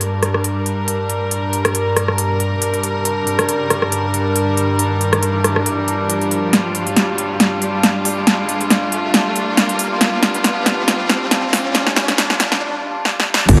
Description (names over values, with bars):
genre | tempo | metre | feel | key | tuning
heavy wobble dubstep | 138 BPM | 4/4 | swing 55% on 16ths, half-time | G minor | A4 = 440 Hz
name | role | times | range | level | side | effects
rich studio string section | sustained chords | 0.0-13.6 s | G2 to D5 | -21 LUFS | equal | sidechain pumping
big-room dance drum kit | drums | 0.0-13.6 s | crash cymbal, hi-hat, rim click, snare drum | -19 LUFS | equal | overdrive
riser and impact | sound effects | 2.7-13.6 s | none | -28 LUFS | equal | none
wobble bass | bass | 13.5-13.6 s | G1 | -13 LUFS | equal | chorus, overdrive
electronic kick drum | drums | 13.5-13.6 s | none | -12 LUFS | equal | none
room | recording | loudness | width
moderate plate reverb, RT60 1.6 s, digital ambience | high-pass filter | -17 LUFS | mono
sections
0.0-13.5 A section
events
build-up 0.0-13.5; filter sweep 0.0-13.5; riser 2.7-12.6; drum fill 6.5-12.6, 13.1-13.5; break 12.6-13.5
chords
0.0 Gm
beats
0.01 0.44 0.88 | 1.31 1.75 2.18 2.62 | 3.05 3.49 3.92 4.36 | 4.79 5.23 5.66 6.10 | 6.53 6.96 7.40 7.83 | 8.27 8.70 9.14 9.57 | 10.01 10.44 10.88 11.31 | 11.75 12.18 12.62 13.05 | 13.49